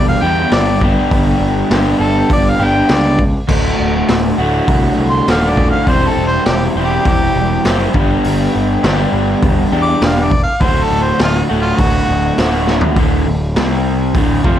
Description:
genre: garage rock duo or trio.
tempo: 101 BPM.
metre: 4/4.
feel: straight.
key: D mixolydian.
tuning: A4 = 440 Hz.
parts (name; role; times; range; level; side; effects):
clear harmonica; melody; 0.0-12.4 s; F4 to D6; -18 LUFS; equal; overdrive, plate reverb.
crunchy overdriven guitar; riff; 0.0-14.6 s; D2 to C5; -15 LUFS; equal; none.
fuzz picked electric bass; bass; 0.0-14.6 s; D1 to E2; -18 LUFS; equal; overdrive.
raw garage drum kit; drums; 0.5-14.6 s; crash cymbal, hi-hat, kick drum, snare drum, toms; -17 LUFS; equal; none.
room: moderate studio reverb, RT60 0.5 s.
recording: cassette tape.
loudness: -11 LUFS.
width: side -10 dB against mid.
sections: 0.0-13.0 A section; 13.0-14.6 B section.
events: harmonica solo 0.0-13.0; drum fill 12.7.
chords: 0.0 G; 3.5 D; 5.9 C/E; 7.9 G; 10.6 D; 13.0 D5; 13.6 C5; 14.2 D5.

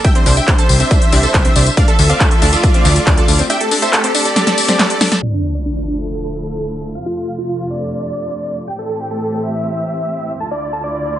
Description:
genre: uplifting trance.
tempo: 139 BPM.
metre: 4/4.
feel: straight.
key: D minor.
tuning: A4 = 439 Hz.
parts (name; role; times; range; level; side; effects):
dense compressed supersaw; melody; 0.0-11.2 s; D4 to C6; -19 LUFS; right 1 dB; sidechain pumping, low-pass filter, digital delay.
rich symphonic string section; sustained chords; 0.0-11.2 s; D2 to E5; -23 LUFS; right 1 dB; sidechain pumping.
analog pluck; arpeggios; 0.0-5.2 s; C4 to A4; -22 LUFS; right 2 dB; chorus, sidechain pumping, digital delay.
big-room dance drum kit; drums; 0.0-5.2 s; handclaps, hi-hat, snare drum, tambourine; -16 LUFS; left 1 dB; overdrive, low-pass filter on hats, studio reverb, low-pass filter on perc, low-pass filter on snare.
electronic kick drum; drums; 0.0-3.2 s; none; -13 LUFS; equal; overdrive, studio reverb.
plucky analog bass; bass; 0.3-3.4 s; C2 to D2; -14 LUFS; equal; sidechain pumping.
sub drop; sound effects; 5.2-7.0 s; none; -22 LUFS; equal; none.
room: light reverb.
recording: low-pass filter, nothing above 10.7 kHz.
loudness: -13 LUFS.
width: side -12 dB against mid.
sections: 0.0-5.2 A section; 5.2-11.2 B section.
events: drop 0.0-5.2; kick drops out 3.5-5.2; drum fill 4.4-5.2; impact 5.2-7.0.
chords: 0.0 Cadd9; 1.8 Dmadd9; 3.5 Am7; 5.2 Dmadd9; 7.0 F; 8.7 Am7; 10.4 Dmadd9.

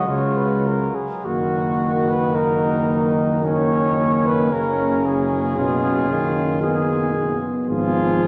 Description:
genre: classical, hymn-like piece for brass band.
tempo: 51-58 BPM.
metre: 3/4.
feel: rubato.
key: unclear.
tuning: A4 = 437 Hz.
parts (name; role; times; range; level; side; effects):
mellow cornet; melody; 0.0-8.3 s; F4 to C#5; -27 LUFS; equal; none.
clear flugelhorn; second line; 0.0-8.3 s; C#4 to G#4; -28 LUFS; equal; none.
dark euphonium; accompaniment; 0.0-8.3 s; G#3 to C#4; -26 LUFS; equal; none.
warm trombone; accompaniment; 0.0-8.3 s; B2 to F3; -26 LUFS; equal; none.
mellow tuba; bass; 0.0-8.3 s; F#1 to C#2; -29 LUFS; equal; none.
room: wet cathedral reverb, RT60 5.3 s.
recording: none.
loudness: -20 LUFS.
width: mono.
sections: 0.0-8.3 A section.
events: none.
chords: 0.1 C#; 1.2 F#; 4.5 C#7/F#; 7.7 Fdim/Ab.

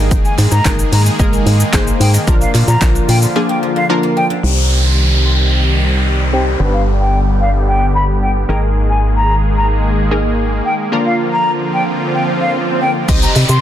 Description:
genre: dance-pop.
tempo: 111 BPM.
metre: 4/4.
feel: straight.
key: C minor.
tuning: A4 = 438 Hz.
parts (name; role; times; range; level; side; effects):
analog pluck; accompaniment; 0.0-13.4 s; F3 to Eb5; -19 LUFS; left 1 dB; chorus, sidechain pumping, low-pass filter.
soft supersaw; sustained chords; 0.0-13.6 s; D3 to Ab4; -20 LUFS; equal; sidechain pumping, low-pass filter.
guzheng; arpeggios; 0.0-7.2, 13.1-13.6 s; D3 to Eb4; -26 LUFS; left 1 dB; sidechain pumping, dub echo.
organ-like FM bass; bass; 0.0-13.6 s; G1 to C3; -14 LUFS; equal; sidechain pumping.
deep house drum kit; drums; 0.1-3.3, 13.1-13.6 s; crash cymbal, handclaps, hi-hat, kick drum, shaker, snare drum; -15 LUFS; equal; overdrive.
hollow concert flute; melody; 0.2-13.6 s; F5 to C6; -19 LUFS; left 1 dB; sidechain pumping, low-pass filter, dub echo.
group handclap; percussion; 0.4-2.9, 13.4-13.5 s; none; -28 LUFS; right 12 dB; none.
downlifter and swell; sound effects; 4.4-13.6 s; none; -20 LUFS; right 1 dB; none.
room: light reverb, digital ambience.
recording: dense, heavily limited modern master.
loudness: -11 LUFS.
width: side -11 dB against mid.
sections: 0.0-4.4 A section; 4.4-13.1 B section.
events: drop 0.0-4.4; break 3.4-4.4; filter sweep 4.4-13.1; swell 11.6-13.1.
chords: 0.0 Absus2; 2.3 Bb; 4.4 Cm; 6.6 G; 8.5 Absus2; 10.9 Bb; 13.1 Cm.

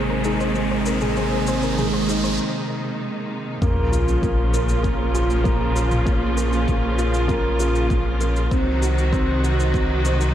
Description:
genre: piano and strings electronica.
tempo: 98 BPM.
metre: 4/4.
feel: straight.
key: Bb minor.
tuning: A4 = 442 Hz.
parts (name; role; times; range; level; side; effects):
rich studio string section; sustained chords; 0.0-10.3 s; Bb2 to Gb4; -25 LUFS; right 1 dB; none.
soft round pluck; arpeggios; 0.0-2.3 s; Ab4 to C5; -30 LUFS; left 2 dB; chorus, sidechain pumping, tape echo.
felt-muted upright piano; riff; 0.0-10.3 s; Ab3 to C5; -24 LUFS; right 1 dB; lush chorus, tape echo.
warm sub bass; bass; 0.0-10.3 s; Ab1 to C2; -23 LUFS; equal; sidechain pumping.
riser and sub drop; sound effects; 0.0-6.1 s; none; -28 LUFS; equal; none.
electronic shaker and toms; drums; 0.2-10.3 s; none; -34 LUFS; equal; overdrive.
electronic kick drum; drums; 3.6-9.9 s; none; -23 LUFS; equal; overdrive.
room: moderate lush hall reverb, RT60 1.7 s.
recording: dreamy mix soaked in reverb.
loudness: -18 LUFS.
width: side -11 dB against mid.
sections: 0.0-3.6 A section; 3.6-10.3 B section.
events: build-up 0.0-3.6; riser 0.0-2.4; break 2.4-3.6; drop 3.6-10.3; impact 3.6-6.1.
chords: 0.0 Abadd9; 3.6 Bbm; 8.5 Cdim.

